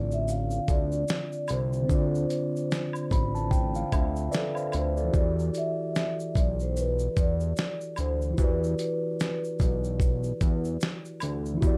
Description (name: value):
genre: lo-fi hip hop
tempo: 74 BPM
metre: 4/4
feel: swing 59% on 16ths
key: E minor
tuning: A4 = 437 Hz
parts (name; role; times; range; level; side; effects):
- vibraphone with soft mallets; melody; 0.0-10.8 s; A4 to F5; -36 LUFS; equal; low-pass filter
- mellow tine electric piano; accompaniment; 0.0-11.8 s; D3 to B5; -34 LUFS; equal; cassette tape, low-pass filter
- fat analog bass; bass; 0.0-11.8 s; A1 to E2; -31 LUFS; equal; none
- dusty soul sampler-style drum kit; drums; 0.1-11.8 s; hi-hat, kick drum, shaker, snare drum; -29 LUFS; equal; none
- maracas and woodblock; percussion; 0.3-11.8 s; none; -45 LUFS; equal; none
room: moderate studio reverb, RT60 0.6 s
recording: dark, warm production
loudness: -28 LUFS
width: mono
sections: 0.0-11.8 A section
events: none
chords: 0.0 Dm7; 5.1 Em9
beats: 0.28 1.09 | 1.90 2.71 3.52 4.33 | 5.14 5.95 6.76 7.57 | 8.38 9.19 10.01 10.81 | 11.63